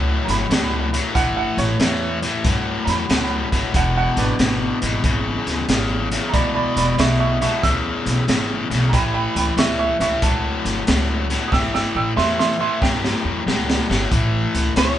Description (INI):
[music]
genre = electric blues shuffle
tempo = 93 BPM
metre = 4/4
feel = swing 66% on 8ths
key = A mixolydian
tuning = A4 = 445 Hz
[part]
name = overdriven electric guitar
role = riff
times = 0.0-15.0 s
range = E2 to F#3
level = -22 LUFS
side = left 3 dB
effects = none
[part]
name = upright bass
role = bass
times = 0.0-15.0 s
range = E1 to G2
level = -24 LUFS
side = equal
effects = none
[part]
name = clear upright piano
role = second line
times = 0.2-14.1 s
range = D4 to E6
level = -24 LUFS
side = right 5 dB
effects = none
[part]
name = crunchy breakbeat drum kit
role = drums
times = 0.3-15.0 s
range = hi-hat, kick drum, snare drum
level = -22 LUFS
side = equal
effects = none
[part]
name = electric guitar through a small old amp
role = melody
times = 14.8-15.0 s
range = C#5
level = -20 LUFS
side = right 2 dB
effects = none
[sound]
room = moderate studio reverb, RT60 0.7 s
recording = band playing live in one room, nothing above 10.6 kHz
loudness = -17 LUFS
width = side -11 dB against mid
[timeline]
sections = 0.0-14.1 A section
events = upright piano solo 0.0-14.1; drum fill 11.5-14.1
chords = 0.0 A9; 3.7 E7; 8.9 A7; 14.1 A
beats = 0.50 | 1.15 1.80 2.45 3.10 | 3.74 4.39 5.04 5.69 | 6.34 6.98 7.63 8.28 | 8.93 9.57 10.22 10.87 | 11.52 12.17 12.81 13.46 | 14.11 14.76